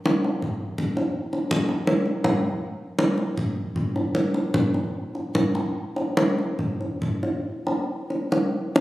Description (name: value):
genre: gamelan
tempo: 68-83 BPM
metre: 4/4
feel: straight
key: none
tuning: none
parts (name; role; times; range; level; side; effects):
- kendang; percussion; 0.1-8.8 s; none; -22 LUFS; equal; none
room: wet recital hall reverb, RT60 1.3 s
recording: recorded on a phone in the room, club reverb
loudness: -22 LUFS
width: side -16 dB against mid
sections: 0.0-7.9 A section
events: none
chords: none